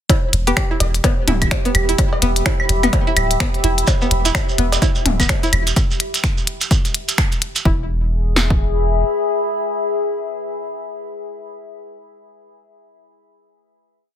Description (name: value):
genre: minimal techno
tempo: 127 BPM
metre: 4/4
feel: swing 60% on 16ths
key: E minor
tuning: A4 = 437 Hz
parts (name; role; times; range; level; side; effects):
- string-like resonator pluck; riff; 0.1-7.9 s; B3 to E4; -24 LUFS; equal; chorus, sidechain pumping, digital delay
- minimal click drum kit; drums; 0.1-7.6 s; finger snaps, hi-hat; -20 LUFS; left 2 dB; studio reverb, soft clipping on snare
- punchy analog drum machine; drums; 0.1-8.6 s; kick drum, snare drum; -18 LUFS; equal; studio reverb
- electronic percussion blips, cowbell, toms and claves; percussion; 0.1-5.6 s; none; -23 LUFS; left 2 dB; studio reverb, ping-pong delay
- deep dark ambient pad; texture; 0.9-10.9 s; G4 to B5; -23 LUFS; left 2 dB; chorus, built-in reverb, sidechain pumping
- punchy sub bass; bass; 0.3-9.0 s; D1 to E1; -18 LUFS; equal; tube saturation, sidechain pumping
- hollow square pluck; melody; 0.5-0.7 s; G4; -25 LUFS; equal; analog chorus, ping-pong delay
- shekere; percussion; 3.9-7.6 s; none; -23 LUFS; right 6 dB; none
room: light reverb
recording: dense, heavily limited modern master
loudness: -15 LUFS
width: side -10 dB against mid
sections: 0.1-7.7 drop; 7.7-11.4 final chord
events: drop 0.1-7.7; band accent 7.2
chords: 0.1 Em; 7.7 E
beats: | 0.10 0.57 1.04 1.51 | 1.99 2.46 2.93 3.40 | 3.87 4.35 4.82 5.29 | 5.76 6.24 6.71 7.18 | 7.65 8.13 8.60 9.07 | 9.54 10.02 10.49